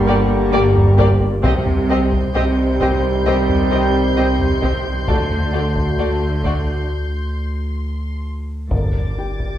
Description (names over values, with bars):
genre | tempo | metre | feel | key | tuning
cinematic, suspense film score | 66 BPM | 4/4 | straight | G harmonic minor | A4 = 440 Hz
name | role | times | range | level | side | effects
clear trombone section | sustained chords | 0.0-6.9 s | D3 to A3 | -23 LUFS | right 3 dB | none
glass harmonica | sustained chords | 0.0-9.6 s | F#4 to Eb5 | -29 LUFS | equal | none
mellow French horn section | sustained chords | 0.0-9.1 s | D3 to Bb4 | -24 LUFS | left 3 dB | none
muted studio cello section | bass | 0.0-9.4 s | G2 to D3 | -22 LUFS | right 2 dB | none
muted studio double bass section | bass | 0.0-9.4 s | G1 to D2 | -24 LUFS | right 2 dB | none
punchy sub bass | drone | 0.0-9.6 s | G1 to D2 | -22 LUFS | equal | none
felt-muted upright piano | texture | 0.0-9.6 s | G4 to C6 | -34 LUFS | left 2 dB | none
muted studio violin section | texture | 0.0-9.6 s | Bb5 to A6 | -30 LUFS | left 2 dB | none
muted studio violin section | melody | 0.1-6.5 s | D5 to Eb5 | -28 LUFS | left 4 dB | none
muted studio violin section | second line | 0.1-6.5 s | F#4 to G4 | -27 LUFS | left 1 dB | none
muted studio viola section | accompaniment | 0.1-6.5 s | A3 to C4 | -26 LUFS | equal | none
solo taiko drums | drums | 0.8-9.6 s | none | -24 LUFS | equal | none
timpani | percussion | 8.7-9.6 s | G2 | -28 LUFS | equal | none
room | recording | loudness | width
wet recital hall reverb, RT60 1.3 s | recorded in a church or concert hall | -15 LUFS | side -11 dB against mid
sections
0.0-8.7 A section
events
break 6.9-8.7; drum fill 7.8-8.7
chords
0.0 Gm; 1.4 Cm; 5.1 D; 8.7 Gm